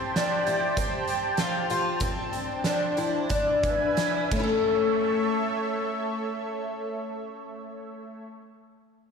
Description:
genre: dream pop.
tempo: 85-100 BPM.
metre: 4/4.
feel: straight.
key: unclear.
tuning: A4 = 442 Hz.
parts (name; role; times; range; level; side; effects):
lush unison pad; sustained chords; 0.0-8.2 s; A3 to A5; -29 LUFS; right 1 dB; chorus, phaser.
picked twelve-string acoustic guitar; arpeggios; 0.0-8.5 s; A3 to A4; -28 LUFS; left 4 dB; wide subtle chorus, ping-pong delay.
oversized low-tuned drum kit; drums; 0.2-4.5 s; crash cymbal, hi-hat, kick drum, snare drum; -31 LUFS; right 2 dB; none.
room: wet concert hall reverb, RT60 2.1 s.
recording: none.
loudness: -24 LUFS.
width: side -6 dB against mid.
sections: 0.0-4.7 A section; 4.7-7.5 B section.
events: slowing down 0.0-4.7.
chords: 0.0 Fadd9; 2.0 D5; 3.3 E7; 4.3 A.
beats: 0.16 0.77 1.38 | 2.01 2.65 3.30 3.97 | 4.67 5.37 6.08 6.78.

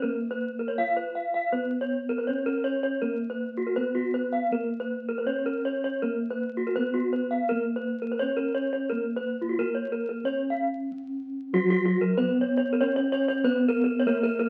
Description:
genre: gamelan.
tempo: 80-94 BPM.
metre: 4/4.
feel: straight.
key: Bb pelog.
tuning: A4 = 440 Hz.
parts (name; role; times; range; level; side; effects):
gamelan-type bronze metallophone; melody; 0.0-14.5 s; Gb3-20c to F4-30c; -31 LUFS; equal; none.
gamelan-type bronze metallophone; arpeggios; 0.0-14.5 s; F4-30c to F5-30c; -30 LUFS; equal; none.
room: wet studio reverb, RT60 0.8 s.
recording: very old 78 rpm record, vinyl crackle.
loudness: -27 LUFS.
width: mono.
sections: 0.0-11.5 A section; 11.5-14.5 B section.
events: break 10.6-11.5.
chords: none.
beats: | 0.02 0.77 1.52 2.27 | 3.02 3.77 4.52 5.27 | 6.02 6.77 7.49 8.20 | 8.90 9.58 10.24 10.90 | 11.54 12.18 12.81 13.45 | 14.08.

